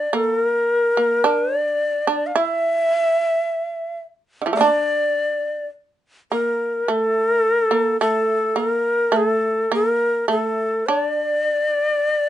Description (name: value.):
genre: japanese traditional, Japanese chamber music.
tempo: 52 BPM.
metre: 4/4.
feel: rubato.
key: unclear.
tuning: A4 = 443 Hz.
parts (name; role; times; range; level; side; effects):
breathy bright shakuhachi; melody; 0.0-12.3 s; A4 to F5; -18 LUFS; left 1 dB; none.
shamisen; second line; 0.0-12.3 s; D3 to E4; -23 LUFS; right 4 dB; none.
room: moderate studio ambience, RT60 0.5 s.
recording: nothing above 10.6 kHz.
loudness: -18 LUFS.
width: side -12 dB against mid.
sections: 0.0-12.3 A section.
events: none.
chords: none.